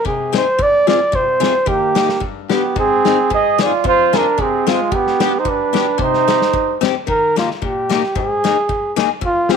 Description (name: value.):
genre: alpine folk, alpine dance band.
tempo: 112 BPM.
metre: 2/4.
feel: swing 53% on 8ths, rubato.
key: C minor.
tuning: A4 = 437 Hz.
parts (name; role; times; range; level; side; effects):
mellow flugelhorn; melody; 0.0-9.6 s; F4 to Eb5; -16 LUFS; right 1 dB; none.
picked acoustic archtop guitar; accompaniment; 0.0-9.6 s; F2 to Ab4; -21 LUFS; left 13 dB; none.
loose indie drum kit; drums; 0.1-9.6 s; kick drum, snare drum; -22 LUFS; left 4 dB; none.
dark trumpet; second line; 1.7-6.8 s; Ab3 to Ab4; -18 LUFS; right 14 dB; none.
room: light reverb, small room ambience.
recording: 1960s-style stereo with parts hard left and right.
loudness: -13 LUFS.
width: side -6 dB against mid.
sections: 0.0-7.1 A section; 7.1-9.6 B section.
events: none.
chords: 0.0 Ab/C; 0.6 Fm; 1.7 Eb; 2.2 G; 2.8 Ab; 3.9 Fm; 4.9 G; 6.0 Cm; 7.1 Eb; 8.2 Absus2.